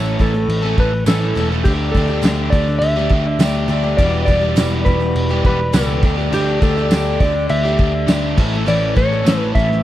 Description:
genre	folk rock and heartland rock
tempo	102 BPM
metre	4/4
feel	straight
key	unclear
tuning	A4 = 440 Hz
part	mellow electric guitar	melody	0.0-9.8 s	G4 to E5	-21 LUFS	right 1 dB	tape echo
part	picked twelve-string acoustic guitar	accompaniment	0.0-9.8 s	E2 to A4	-23 LUFS	left 5 dB	none
part	overdriven electric guitar	riff	0.0-9.8 s	E2 to A4	-23 LUFS	right 1 dB	none
part	vintage muted picked electric bass	bass	0.0-9.8 s	E1 to D2	-20 LUFS	equal	none
part	cloth-damped thuddy drum kit	drums	0.2-9.8 s	crash cymbal, kick drum, snare drum	-19 LUFS	equal	none
part	tambourine	percussion	1.1-9.4 s	none	-34 LUFS	right 10 dB	none
room	small room ambience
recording	dark, warm production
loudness	-14 LUFS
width	side -13 dB against mid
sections	0.0-9.8 A section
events	none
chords	0.0 A; 1.6 Dsus4; 4.0 Em7; 6.0 Dsus4; 8.4 A

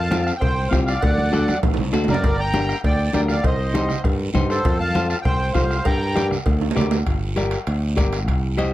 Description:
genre	latin, cumbia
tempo	199 BPM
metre	4/4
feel	straight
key	G minor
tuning	A4 = 441 Hz
part	accordion	melody	0.0-6.3 s	A4 to Bb5	-24 LUFS	equal	light tremolo tuning
part	modern bright fingered electric bass	bass	0.0-8.7 s	G1 to G2	-23 LUFS	equal	none
part	semi-hollow electric guitar	accompaniment	0.1-8.7 s	C4 to Eb5	-25 LUFS	left 3 dB	none
part	bombo	percussion	0.1-8.7 s	none	-24 LUFS	left 1 dB	none
part	congas	percussion	0.1-8.7 s	none	-28 LUFS	right 2 dB	none
part	guiro	percussion	0.1-8.7 s	none	-37 LUFS	right 5 dB	none
part	cowbell and timbales	percussion	0.4-8.7 s	none	-30 LUFS	right 4 dB	none
room	light reverb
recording	dark, warm production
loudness	-18 LUFS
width	side -15 dB against mid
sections	0.0-7.1 A section; 7.1-8.7 B section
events	drum fill 1.3-2.2, 6.6-7.1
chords	0.0 F; 1.0 D; 2.2 Gm; 3.4 Cm; 4.7 F; 5.9 Gm

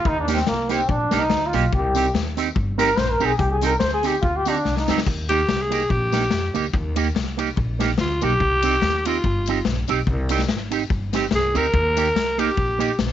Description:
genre	ska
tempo	144 BPM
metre	4/4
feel	swing 55% on 8ths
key	Eb major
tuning	A4 = 439 Hz
part	bright trombone	melody	0.0-5.0 s	Bb3 to C5	-22 LUFS	equal	slapback echo
part	upright bass	bass	0.1-13.1 s	G1 to F2	-25 LUFS	equal	none
part	street-band drum kit	drums	0.1-13.1 s	crash cymbal, hi-hat, kick drum, ride cymbal, snare drum	-26 LUFS	left 4 dB	slapback echo
part	electric guitar with an envelope filter	accompaniment	0.3-12.9 s	Bb3 to G4	-24 LUFS	right 10 dB	lush chorus
part	tambourine	percussion	0.3-12.9 s	none	-36 LUFS	left 13 dB	slapback echo
part	growling alto saxophone	melody	5.3-13.0 s	F4 to Bb4	-21 LUFS	equal	none
room	light reverb, small room ambience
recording	1960s-style stereo with parts hard left and right, nothing above 7.7 kHz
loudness	-18 LUFS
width	side -11 dB against mid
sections	0.0-5.1 A section; 5.1-13.1 A section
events	trombone solo 0.0-5.1; drum fill 4.7-5.1; alto saxophone solo 5.1-13.1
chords	0.0 Eb; 1.7 Cm; 5.1 Eb; 8.4 Cm; 11.7 Eb

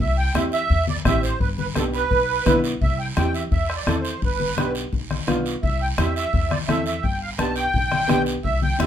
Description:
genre	latin, cumbia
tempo	170 BPM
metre	4/4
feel	straight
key	C major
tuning	A4 = 440 Hz
part	musette accordion	melody	0.0-8.9 s	A4 to A5	-24 LUFS	right 2 dB	none
part	upright bass	bass	0.0-8.9 s	G1 to E2	-26 LUFS	equal	none
part	bombo	percussion	0.0-8.9 s	none	-26 LUFS	left 2 dB	none
part	congas	percussion	0.0-8.9 s	none	-28 LUFS	left 7 dB	none
part	warm upright piano	accompaniment	0.3-8.9 s	B3 to A4	-25 LUFS	right 1 dB	none
part	guiro	percussion	0.4-8.9 s	none	-34 LUFS	right 5 dB	none
room	light reverb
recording	minimal, uncompressed stereo recording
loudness	-19 LUFS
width	side -10 dB against mid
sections	0.0-8.9 A section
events	none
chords	0.0 C; 1.4 G; 2.8 C; 4.2 G7; 5.6 C; 7.0 G

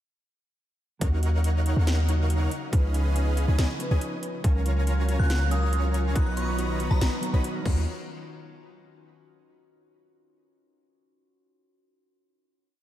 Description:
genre	future bass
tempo	140 BPM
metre	4/4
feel	half-time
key	Eb minor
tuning	A4 = 443 Hz
part	mellow electric guitar	accompaniment	1.0-7.8 s	F3 to A#5	-34 LUFS	right 3 dB	ensemble chorus, sidechain pumping, ping-pong delay
part	airy breathy pad	sustained chords	1.4-7.9 s	Db3 to F5	-38 LUFS	left 1 dB	chorus, sidechain pumping
part	dense compressed supersaw	riff	1.0-7.8 s	B3 to B5	-34 LUFS	equal	sidechain pumping, ping-pong delay
part	warm 808-style bass	bass	1.0-7.9 s	B1 to Eb2	-23 LUFS	equal	sidechain pumping
part	electronic kick drum	drums	1.0-7.7 s	none	-24 LUFS	equal	overdrive
part	trap drum kit	drums	1.0-7.7 s	crash cymbal, hi-hat, snare drum	-35 LUFS	equal	overdrive
part	concert harp	arpeggios	4.4-7.9 s	Db4 to B4	-40 LUFS	left 2 dB	sidechain pumping, ping-pong delay
part	glassy synth bell	melody	5.2-7.2 s	A#5 to Gb6	-35 LUFS	right 1 dB	chorus, phaser, vintage 12-bit sampler grit, sidechain pumping, tape echo
room	light reverb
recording	none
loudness	-23 LUFS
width	side -13 dB against mid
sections	1.0-7.9 drop; 7.9-9.6 final hit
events	drop 1.0-7.9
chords	1.0 Ebm9; 2.5 Db9; 4.4 Gbmaj7/Db; 6.2 Bmaj7; 7.7 Ebm9; 7.9 N.C.

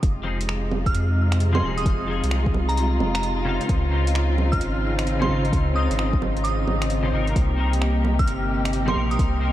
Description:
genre	future garage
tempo	131 BPM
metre	4/4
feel	swing 65% on 16ths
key	F minor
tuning	A4 = 440 Hz
part	muted studio string section	sustained chords	0.0-9.5 s	C3 to G4	-26 LUFS	equal	sidechain pumping
part	warm sub bass	bass	0.0-9.5 s	Eb1 to F2	-23 LUFS	equal	sidechain pumping
part	deep house drum kit	drums	0.0-9.3 s	bongos, finger snaps, hi-hat	-31 LUFS	right 3 dB	overdrive, studio reverb
part	electronic kick drum	drums	0.0-9.3 s	none	-23 LUFS	equal	overdrive, studio reverb
part	twelve-string electric guitar	accompaniment	0.2-9.5 s	C3 to Bb4	-32 LUFS	left 3 dB	ensemble chorus, sidechain pumping, tape echo
part	glassy synth bell	melody	0.9-9.3 s	Bb5 to F6	-30 LUFS	right 1 dB	chorus, tremolo, ping-pong delay
room	moderate huge ambient reverb, RT60 9.1 s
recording	dreamy mix soaked in reverb, cassette tape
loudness	-20 LUFS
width	side -13 dB against mid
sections	0.0-9.5 A section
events	none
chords	0.0 Fm7; 3.7 Dbmaj9; 7.4 Cm7

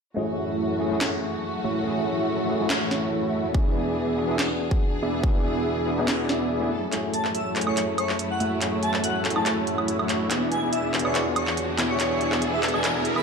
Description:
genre	future bass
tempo	142 BPM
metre	4/4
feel	half-time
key	F# minor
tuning	A4 = 440 Hz
part	tine electric piano	accompaniment	0.1-13.2 s	A3 to G#4	-30 LUFS	left 2 dB	overdrive, fast stereo tremolo, sidechain pumping, low-pass filter, ping-pong delay
part	dark studio string section	sustained chords	0.2-13.2 s	E2 to A4	-32 LUFS	equal	sidechain pumping
part	dense compressed supersaw	riff	0.2-13.2 s	A3 to E5	-27 LUFS	right 1 dB	sidechain pumping, low-pass filter, ping-pong delay
part	trap drum kit	drums	1.0-13.2 s	handclaps, hi-hat, snare drum, woodblock	-28 LUFS	right 1 dB	high-pass filter on snare, high-pass filter on hats, high-pass filter on perc
part	electronic kick drum	drums	3.5-5.3 s	none	-22 LUFS	equal	overdrive
part	riser	sound effects	9.2-13.2 s	none	-33 LUFS	right 2 dB	none
part	airy dreamy lead	melody	7.1-13.2 s	C#5 to B5	-29 LUFS	left 1 dB	chorus, phaser, sidechain pumping, ping-pong delay
room	wet plate reverb, RT60 1.4 s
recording	dreamy mix soaked in reverb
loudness	-22 LUFS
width	side -5 dB against mid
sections	0.2-6.9 A section; 6.9-13.2 B section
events	break 6.5-6.9; build-up 6.9-13.2; drum fill 6.9-13.2; filter sweep on supersaw synth 6.9-13.2; riser 9.2-13.2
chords	0.2 F#m7; 3.5 E7; 6.7 F#m7; 10.3 E7

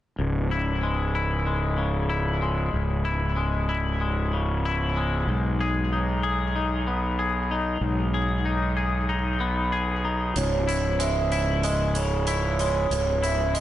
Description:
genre	post-rock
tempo	94 BPM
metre	4/4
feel	straight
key	C# minor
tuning	A4 = 441 Hz
part	twangy electric guitar	arpeggios	0.2-13.6 s	C#2 to G#4	-27 LUFS	left 4 dB	analog chorus, tape echo, slapback echo
part	fuzz fingered electric bass	bass	0.2-13.6 s	C#1 to B1	-26 LUFS	right 1 dB	overdrive
part	vibraphone with medium mallets	arpeggios	10.4-13.6 s	C#5 to E5	-27 LUFS	right 6 dB	tape echo, slapback echo
part	hi-hat	drums	10.4-13.6 s	none	-34 LUFS	right 4 dB	none
room	moderate lush hall reverb, RT60 2.4 s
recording	big arena sound, nothing above 10.8 kHz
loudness	-23 LUFS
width	side -13 dB against mid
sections	0.2-13.6 A section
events	none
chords	0.2 C#m; 5.3 G#m/B; 10.4 C#m

